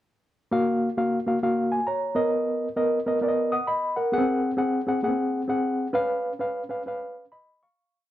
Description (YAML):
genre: soul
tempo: 132 BPM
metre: 4/4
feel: swing 66% on 8ths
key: F# major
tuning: A4 = 440 Hz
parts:
  - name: mellow reed electric piano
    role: solo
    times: 0.5-8.1 s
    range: A#3 to D#6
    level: -23 LUFS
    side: equal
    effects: fast tremolo
room: moderate large studio reverb, RT60 1.0 s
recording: band playing live in one room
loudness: -23 LUFS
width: side -13 dB against mid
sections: 0.5-7.8 verse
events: fade-out 6.0-7.8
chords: 0.5 F#maj7; 2.1 Bmaj7; 4.1 G#7; 6.0 C#7